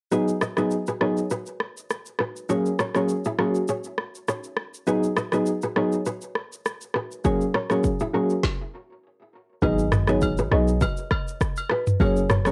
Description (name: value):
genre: afrobeats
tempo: 101 BPM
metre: 4/4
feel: swing 55% on 16ths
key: G# minor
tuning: A4 = 440 Hz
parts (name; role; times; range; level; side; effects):
- soft electric-piano-like synth keys; accompaniment; 0.1-12.5 s; F#3 to G#4; -26 LUFS; equal; chorus, cassette tape
- kora; riff; 0.1-12.5 s; C#4 to D#5; -32 LUFS; equal; cassette tape, tape echo
- afro-pop drum kit; drums; 0.1-12.5 s; kick drum, rim click, shaker, snare drum, toms; -28 LUFS; equal; cassette tape
- marimba with medium mallets; melody; 9.6-12.5 s; A#4 to D#5; -32 LUFS; equal; cassette tape, plate reverb, tape echo
- hard-hitting 808-style bass; bass; 9.6-12.5 s; F#1 to B1; -27 LUFS; equal; none
- agogo bells; percussion; 9.6-12.2 s; none; -36 LUFS; equal; none
room: light reverb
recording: home recording on cassette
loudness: -25 LUFS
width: mono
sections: 0.1-9.6 A section; 9.6-12.5 B section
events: stop 8.4-9.6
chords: 0.1 G#m7; 2.5 F#add9; 4.9 G#m7; 7.2 F#add9; 9.6 G#m7; 12.0 F#add9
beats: | 0.12 0.71 1.31 1.90 | 2.49 3.09 3.68 4.28 | 4.87 5.46 6.06 6.65 | 7.25 7.84 8.44 9.03 | 9.62 10.22 10.81 11.40 | 12.00